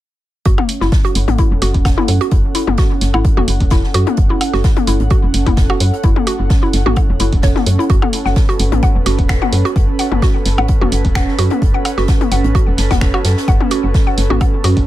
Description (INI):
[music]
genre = minimal techno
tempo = 129 BPM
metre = 4/4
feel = swing 54% on 16ths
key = F# minor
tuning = A4 = 440 Hz
[part]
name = mallet-like synth pluck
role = riff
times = 0.5-14.7 s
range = E4 to F#5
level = -21 LUFS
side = equal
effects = chorus, sidechain pumping, tape echo
[part]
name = woody FM bass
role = bass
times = 0.5-14.9 s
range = E1 to F#2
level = -16 LUFS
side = equal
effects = tube saturation, sidechain pumping
[part]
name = electronic kick drum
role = drums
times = 0.5-14.9 s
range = none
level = -14 LUFS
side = equal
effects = none
[part]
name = loose indie drum kit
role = drums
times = 0.5-14.8 s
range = hi-hat, snare drum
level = -31 LUFS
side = right 3 dB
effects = sidechain pumping on hats, high-pass filter on hats, high-pass filter on snare, high-pass filter on room
[part]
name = airy breathy pad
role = texture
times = 0.5-14.9 s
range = C#4 to F#5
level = -22 LUFS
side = right 3 dB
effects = chorus, sidechain pumping
[part]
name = electronic toms and percussion blips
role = percussion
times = 0.6-14.5 s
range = none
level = -22 LUFS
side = left 8 dB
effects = dub echo
[part]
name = punchy analog drum machine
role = drums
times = 0.7-14.9 s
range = finger snaps, hi-hat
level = -23 LUFS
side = right 3 dB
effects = none
[sound]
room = light reverb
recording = none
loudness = -12 LUFS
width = side -14 dB against mid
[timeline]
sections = 0.5-14.9 A section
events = none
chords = 0.5 F#m